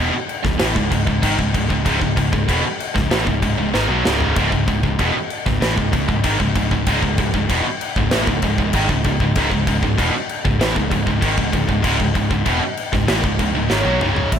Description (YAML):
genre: hard rock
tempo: 96 BPM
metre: 4/4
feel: straight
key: C# minor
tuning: A4 = 440 Hz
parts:
  - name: heavy high-gain guitar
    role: riff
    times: 0.0-14.3 s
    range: C#2 to F#3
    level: -23 LUFS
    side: right 14 dB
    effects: distortion
  - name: scooped high-gain guitar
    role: riff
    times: 0.0-14.3 s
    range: C#2 to F#3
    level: -22 LUFS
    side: left 6 dB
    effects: distortion
  - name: picked electric bass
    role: bass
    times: 0.0-14.4 s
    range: C#1 to B1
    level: -23 LUFS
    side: equal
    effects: none
  - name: big rock drum kit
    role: drums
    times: 0.3-14.4 s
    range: crash cymbal, kick drum, ride cymbal, snare drum, toms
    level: -20 LUFS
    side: left 1 dB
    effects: none
  - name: pure sine lead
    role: melody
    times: 13.7-14.4 s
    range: C#5 to E5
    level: -23 LUFS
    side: right 2 dB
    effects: chorus, phaser
room: light reverb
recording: none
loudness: -16 LUFS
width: side -8 dB against mid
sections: 0.0-14.3 A section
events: drum fill 3.7-4.4, 13.7-14.3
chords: 0.0 C#m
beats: 0.60 1.23 | 1.85 2.48 3.11 3.73 | 4.36 4.99 5.61 6.24 | 6.86 7.49 8.11 8.73 | 9.36 9.98 10.60 11.22 | 11.84 12.46 13.08 13.70 | 14.32